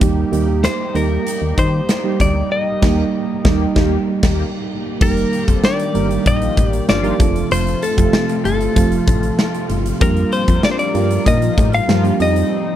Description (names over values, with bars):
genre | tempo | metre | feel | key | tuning
1980s-style pop | 96 BPM | 4/4 | straight | unclear | A4 = 437 Hz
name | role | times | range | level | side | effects
mellow FM electric piano | accompaniment | 0.0-12.8 s | Eb3 to Bb4 | -21 LUFS | right 7 dB | chorus
brassy analog pad | sustained chords | 0.0-12.8 s | C3 to Bb4 | -26 LUFS | left 4 dB | chorus
solid FM bass | bass | 0.0-12.4 s | F1 to Eb3 | -19 LUFS | left 1 dB | none
huge arena drum kit | drums | 0.0-12.5 s | crash cymbal, hi-hat, kick drum, snare drum, tambourine | -19 LUFS | equal | none
direct-recorded clean electric guitar | melody | 0.6-12.8 s | A4 to F5 | -21 LUFS | left 2 dB | slapback echo
mellow synth brass | stabs | 2.8-12.1 s | Eb3 to C5 | -25 LUFS | left 6 dB | chorus
marimba with medium hard mallets | second line | 5.0-12.5 s | A3 to F4 | -28 LUFS | left 7 dB | slapback echo
room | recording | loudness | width
little or no reverb | none | -14 LUFS | side -11 dB against mid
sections
0.0-5.0 A section; 5.0-12.8 B section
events
band accent 2.5-5.0, 12.5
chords
0.0 Eb; 5.0 Eb/F; 7.2 F; 10.0 Bb6/F; 12.2 Cm/F